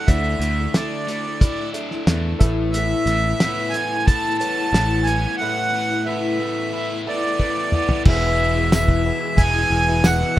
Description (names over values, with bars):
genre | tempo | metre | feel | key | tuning
folk rock and heartland rock | 90 BPM | 4/4 | straight | E mixolydian | A4 = 440 Hz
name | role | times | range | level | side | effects
accordion | melody | 0.0-10.4 s | D5 to A5 | -22 LUFS | right 1 dB | none
picked old ladder-braced acoustic guitar | accompaniment | 0.0-10.4 s | E2 to E4 | -27 LUFS | left 4 dB | none
reed electric piano | accompaniment | 0.0-10.4 s | G#4 to F#5 | -34 LUFS | right 2 dB | fast tremolo
overdriven semi-hollow guitar | riff | 0.0-10.4 s | E2 to G#4 | -28 LUFS | right 1 dB | none
modern bright picked electric bass | bass | 0.1-10.2 s | E1 to E2 | -21 LUFS | equal | none
cloth-damped thuddy drum kit | drums | 0.1-10.3 s | crash cymbal, hi-hat, kick drum, snare drum, toms | -17 LUFS | equal | none
mellow tonewheel organ | sustained chords | 8.0-10.4 s | B4 to E6 | -36 LUFS | equal | none
tambourine | percussion | 8.7-10.2 s | none | -32 LUFS | right 4 dB | none
room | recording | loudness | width
little or no reverb | rough home demo mix | -17 LUFS | side -14 dB against mid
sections
0.0-8.1 A section; 8.1-10.4 B section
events
break 5.4-8.1; drum fill 7.4-8.1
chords
0.0 Dsus2; 2.4 Asus2; 8.1 E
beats
| 0.07 0.74 1.41 2.07 | 2.74 3.40 4.07 4.73 | 5.40 6.06 6.73 7.39 | 8.06 8.72 9.39 10.05